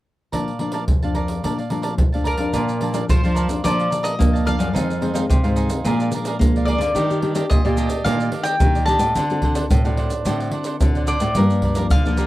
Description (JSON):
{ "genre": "samba and choro", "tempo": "109 BPM", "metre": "4/4", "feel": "straight", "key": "Bb major", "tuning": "A4 = 441 Hz", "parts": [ { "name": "cavaquinho", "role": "accompaniment", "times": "0.3-12.3 s", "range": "D4 to A5", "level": "-27 LUFS", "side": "right 4 dB", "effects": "none" }, { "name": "nylon-string guitar", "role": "accompaniment", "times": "0.3-12.3 s", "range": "F2 to A4", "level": "-25 LUFS", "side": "left 4 dB", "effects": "none" }, { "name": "surdo, pandeiro and maracas", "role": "percussion", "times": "0.3-12.3 s", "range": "none", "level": "-20 LUFS", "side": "equal", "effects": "none" }, { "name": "mandolin", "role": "melody", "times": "2.3-12.3 s", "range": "Bb4 to A5", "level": "-24 LUFS", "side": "left 2 dB", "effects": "none" }, { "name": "nylon-string guitar", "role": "bass", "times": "2.5-12.3 s", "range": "F2 to Bb3", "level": "-22 LUFS", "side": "right 1 dB", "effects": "none" } ], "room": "little or no reverb", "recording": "dry, close 1970s-style studio recording", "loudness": "-17 LUFS", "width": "side -16 dB against mid", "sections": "0.3-2.5 A section; 2.5-12.3 B section", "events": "none", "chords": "0.3 Bbmaj7; 4.7 Fm7; 5.9 Bb7; 7.0 Ebmaj7#11; 9.2 D7; 11.4 Gm7" }